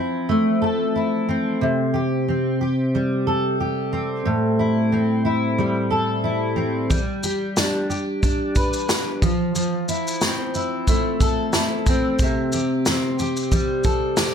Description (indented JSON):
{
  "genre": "acoustic pop",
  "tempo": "91 BPM",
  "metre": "4/4",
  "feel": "swing 55% on 16ths",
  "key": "unclear",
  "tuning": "A4 = 440 Hz",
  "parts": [
    { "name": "fingerpicked steel-string acoustic guitar", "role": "accompaniment", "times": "0.0-14.3 s", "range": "A2 to B4", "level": "-20 LUFS", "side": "equal", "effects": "double-tracked left and right" },
    { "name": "natural country drum kit", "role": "drums", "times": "6.9-14.3 s", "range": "kick drum, shaker, snare drum", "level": "-22 LUFS", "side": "equal", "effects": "none" }
  ],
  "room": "moderate studio ambience, RT60 0.5 s",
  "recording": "none",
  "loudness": "-19 LUFS",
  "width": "side -7 dB against mid",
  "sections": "0.0-14.3 A section",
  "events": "none",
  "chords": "0.0 Fmaj7; 1.6 C5; 4.3 Am7; 6.9 G; 9.2 Fmaj7; 12.2 C5",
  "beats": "0.30 0.96 | 1.62 2.28 2.94 3.60 | 4.26 4.92 5.58 6.24 | 6.91 7.57 8.23 8.89 | 9.55 10.21 10.87 11.53 | 12.20 12.86 13.52 14.18"
}